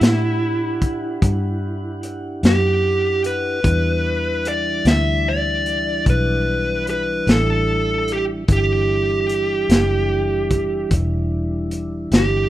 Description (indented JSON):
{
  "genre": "slow blues",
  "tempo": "50 BPM (dotted quarters)",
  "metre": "12/8",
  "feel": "straight",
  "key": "E minor",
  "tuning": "A4 = 440 Hz",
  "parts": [
    { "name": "smooth overdriven lead guitar", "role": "melody", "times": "0.0-12.5 s", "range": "E4 to E5", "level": "-20 LUFS", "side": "right 1 dB", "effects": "none" },
    { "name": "mellow tonewheel organ", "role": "sustained chords", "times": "0.0-12.5 s", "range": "E3 to F#5", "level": "-26 LUFS", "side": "equal", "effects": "slow rotary speaker" },
    { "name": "vintage muted fingered electric bass", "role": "bass", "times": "0.0-12.5 s", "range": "E1 to A2", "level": "-22 LUFS", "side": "equal", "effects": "none" },
    { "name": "crunchy breakbeat drum kit", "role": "drums", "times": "0.0-12.3 s", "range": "hi-hat, kick drum, snare drum", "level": "-17 LUFS", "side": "equal", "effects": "none" }
  ],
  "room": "small room ambience",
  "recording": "rough home demo mix",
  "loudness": "-17 LUFS",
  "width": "side -14 dB against mid",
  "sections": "0.0-12.5 A section",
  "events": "none",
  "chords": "0.0 Em9",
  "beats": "0.01 1.22 2.43 | 3.64 4.85 6.06 7.27 | 8.48 9.70 10.91 12.12"
}